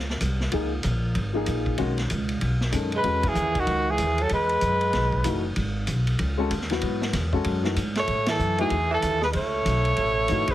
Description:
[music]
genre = modal jazz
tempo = 190 BPM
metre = 4/4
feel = swing 62% on 8ths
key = E major from 3.0 s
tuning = A4 = 439 Hz
[part]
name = upright bass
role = bass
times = 0.0-10.5 s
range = F#1 to A2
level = -26 LUFS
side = equal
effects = none
[part]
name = vintage drum kit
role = drums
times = 0.1-10.5 s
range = hi-hat, kick drum, ride cymbal, snare drum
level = -32 LUFS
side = equal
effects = none
[part]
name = warm baby grand piano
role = accompaniment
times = 0.5-3.2, 5.2-10.5 s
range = Eb3 to A4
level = -28 LUFS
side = left 3 dB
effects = none
[part]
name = clear trumpet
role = melody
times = 3.0-5.4, 8.0-10.5 s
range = F#4 to C#5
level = -24 LUFS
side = equal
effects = none
[part]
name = growling tenor saxophone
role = second line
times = 3.0-5.4, 8.0-10.5 s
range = D#3 to A3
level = -29 LUFS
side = right 4 dB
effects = none
[sound]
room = light reverb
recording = heavily compressed radio sound, multiband compression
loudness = -22 LUFS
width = side -14 dB against mid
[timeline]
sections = 0.0-3.0 A section; 3.0-10.5 B section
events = band accent 3.2, 8.2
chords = 0.0 Dbmaj9; 1.8 Cb13; 3.0 Emaj9; 8.1 Aadd9

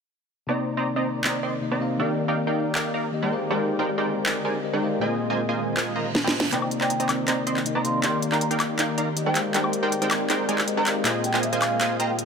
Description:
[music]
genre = future bass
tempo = 159 BPM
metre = 4/4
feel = half-time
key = C minor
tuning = A4 = 437 Hz
[part]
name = bell-like tine electric piano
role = accompaniment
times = 0.5-12.2 s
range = Bb2 to F5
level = -28 LUFS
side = left 5 dB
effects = tape echo
[part]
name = ethereal airy pad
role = sustained chords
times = 1.0-12.2 s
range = D3 to Eb5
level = -33 LUFS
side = right 2 dB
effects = ensemble chorus, built-in reverb
[part]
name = supersaw stab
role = riff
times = 0.5-12.1 s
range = Ab3 to C6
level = -26 LUFS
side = right 2 dB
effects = low-pass filter
[part]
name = trap drum kit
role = drums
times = 1.2-12.2 s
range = handclaps, hi-hat, snare drum, woodblock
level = -27 LUFS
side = equal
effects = none
[part]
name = reverse cymbal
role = sound effects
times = 5.9-6.5 s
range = none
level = -36 LUFS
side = right 6 dB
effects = none
[part]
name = mellow baroque flute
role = melody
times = 6.5-12.2 s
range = F5 to C6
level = -29 LUFS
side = right 2 dB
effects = low-pass filter, ping-pong delay
[sound]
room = moderate shimmer reverb, RT60 4.4 s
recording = none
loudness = -22 LUFS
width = side -6 dB against mid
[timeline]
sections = 0.5-6.5 A section; 6.5-12.2 B section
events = filter sweep on ambient pad 0.5-6.5; reverse cymbal 5.9-6.5; drum fill 6.1-6.5, 6.5-12.2; build-up 6.5-12.2; filter sweep on supersaw synth 6.5-12.2; filter sweep on flute 6.5-12.2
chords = 0.5 Cm9; 2.0 Ebmaj7; 3.3 Abmaj9#11; 5.0 Bb7sus4; 6.5 Cm9; 8.0 Ebmaj7; 9.4 Abmaj9#11; 11.1 Bb7sus4

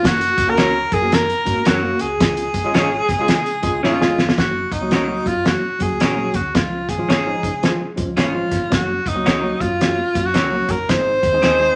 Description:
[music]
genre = uptempo 1960s-style soul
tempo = 110 BPM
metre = 4/4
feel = swing 62% on 8ths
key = Db major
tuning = A4 = 440 Hz
[part]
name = breathy tenor saxophone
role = melody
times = 0.0-11.8 s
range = Eb4 to C5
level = -22 LUFS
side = equal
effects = none
[part]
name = vibraphone with medium mallets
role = second line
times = 0.0-3.8 s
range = Gb4 to Bb4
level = -31 LUFS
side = equal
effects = none
[part]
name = tine electric piano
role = accompaniment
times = 0.0-11.8 s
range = F3 to Bb4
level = -27 LUFS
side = equal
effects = overdrive
[part]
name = vintage muted fingered electric bass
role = bass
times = 0.0-11.7 s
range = Gb1 to Db3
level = -34 LUFS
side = equal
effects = none
[part]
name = cloth-damped thuddy drum kit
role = drums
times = 0.0-11.6 s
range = hi-hat, kick drum, snare drum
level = -22 LUFS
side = equal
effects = none
[part]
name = electric guitar through a small old amp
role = stabs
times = 0.6-11.6 s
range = C4 to Db5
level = -26 LUFS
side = equal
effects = spring reverb
[part]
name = clear horn section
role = second line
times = 11.4-11.6 s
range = Eb3 to Ab4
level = -32 LUFS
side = equal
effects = none
[sound]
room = wet studio reverb, RT60 0.6 s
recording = none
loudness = -18 LUFS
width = mono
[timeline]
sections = 0.0-4.4 A section; 4.4-11.8 B section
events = drum fill 3.8-4.4; band accent 10.9-11.8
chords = 0.0 Gb; 2.2 Db; 4.4 Gb; 6.6 Db; 8.7 Gb; 10.9 Ab

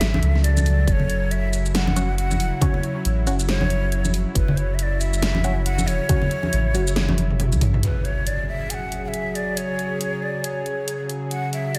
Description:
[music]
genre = deep dubstep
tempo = 138 BPM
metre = 4/4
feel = swing 59% on 16ths, half-time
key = F# minor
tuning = A4 = 440 Hz
[part]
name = breathy ney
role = melody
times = 0.0-11.8 s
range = B4 to G#5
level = -31 LUFS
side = equal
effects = dub echo
[part]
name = bowed-like drone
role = sustained chords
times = 0.0-11.8 s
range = C#3 to A4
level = -30 LUFS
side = equal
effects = built-in reverb
[part]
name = soft dub sub bass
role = bass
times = 0.0-7.8 s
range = E1 to C#2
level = -24 LUFS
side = equal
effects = none
[part]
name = dubstep drum kit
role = drums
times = 0.0-11.8 s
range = hi-hat, shaker, snare drum, toms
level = -28 LUFS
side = equal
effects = none
[part]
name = congas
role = percussion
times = 0.1-7.6 s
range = none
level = -28 LUFS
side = equal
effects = none
[part]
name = electronic kick drum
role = drums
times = 0.9-6.2 s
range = none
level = -24 LUFS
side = equal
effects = none
[part]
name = filtered dub chord stab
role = stabs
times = 2.0-6.8 s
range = F#3 to F#4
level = -33 LUFS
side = equal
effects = phaser, dub echo
[part]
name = impact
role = sound effects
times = 7.8-9.6 s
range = none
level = -31 LUFS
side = equal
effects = none
[sound]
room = moderate plate reverb, RT60 1.1 s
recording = dreamy mix soaked in reverb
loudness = -22 LUFS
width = mono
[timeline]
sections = 0.0-7.8 A section; 7.8-11.8 B section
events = drum fill 7.0-7.8; kick drops out 7.4-7.8; impact 7.8-9.6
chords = 0.0 F#5

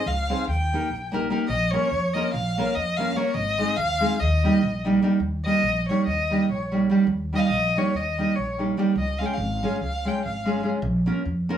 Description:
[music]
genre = balkan folk, Balkan wedding band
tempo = 289 BPM (eighths)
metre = 9/8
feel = straight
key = Eb mixolydian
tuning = A4 = 440 Hz
[part]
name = warm violin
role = melody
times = 0.0-10.6 s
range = Db5 to G5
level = -26 LUFS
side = left 1 dB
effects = none
[part]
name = nylon-string guitar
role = accompaniment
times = 0.0-11.6 s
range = G3 to C5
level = -23 LUFS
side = right 2 dB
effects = none
[part]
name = upright bass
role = bass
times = 0.1-11.5 s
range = Ab1 to F2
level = -28 LUFS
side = equal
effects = none
[sound]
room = wet studio reverb, RT60 0.5 s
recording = band playing live in one room, small room ambience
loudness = -21 LUFS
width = side -9 dB against mid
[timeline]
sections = 0.0-5.2 A section; 5.2-11.6 B section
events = violin solo 5.2-11.6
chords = 0.5 Eb; 1.5 Bbm; 3.4 Ab; 4.2 Eb; 9.0 Db; 10.8 Bbm

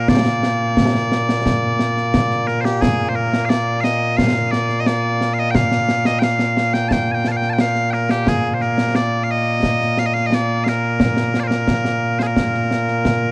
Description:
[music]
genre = scottish traditional, Scottish pipe music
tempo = 88 BPM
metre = 4/4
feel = straight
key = Bb major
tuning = A4 = 440 Hz
[part]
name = loud bright bagpipes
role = melody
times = 0.0-13.3 s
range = Bb2 to A5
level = -20 LUFS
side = equal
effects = none
[part]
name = concert snare drum and concert bass drum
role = drums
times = 0.1-13.2 s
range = none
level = -22 LUFS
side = equal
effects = none
[sound]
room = light reverb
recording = worn, warbling old tape, cassette tape, warbly pitch drift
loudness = -18 LUFS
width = mono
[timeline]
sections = 0.0-13.3 A section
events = none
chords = none

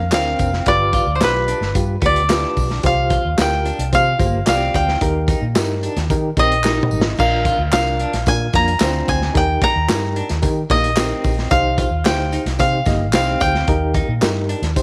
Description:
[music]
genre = uptempo 1960s-style soul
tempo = 111 BPM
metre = 4/4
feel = straight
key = unclear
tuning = A4 = 440 Hz
[part]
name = koto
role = melody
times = 0.0-14.8 s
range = B4 to Bb5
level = -22 LUFS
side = equal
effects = none
[part]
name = reed electric piano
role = accompaniment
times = 0.0-14.8 s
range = C4 to Eb5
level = -26 LUFS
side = equal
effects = fast tremolo
[part]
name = vintage muted fingered electric bass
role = bass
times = 0.0-14.7 s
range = F1 to Eb3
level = -24 LUFS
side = equal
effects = none
[part]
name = clean electric guitar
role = riff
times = 0.1-14.7 s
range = Bb3 to F4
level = -30 LUFS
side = equal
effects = tremolo
[part]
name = crunchy breakbeat drum kit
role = drums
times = 0.1-14.8 s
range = crash cymbal, hi-hat, kick drum, snare drum, toms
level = -23 LUFS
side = equal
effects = none
[part]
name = handclaps and tambourine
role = percussion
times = 0.1-14.8 s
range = none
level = -33 LUFS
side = equal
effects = none
[sound]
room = light reverb, studio ambience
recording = none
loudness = -17 LUFS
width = mono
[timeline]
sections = 0.0-14.8 A section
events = drum fill 6.6-7.2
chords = 0.0 Bbadd9; 0.7 G7; 2.8 Csus4; 5.0 Eb; 7.2 Bb; 9.4 Eb; 11.5 Cm; 13.7 Eb

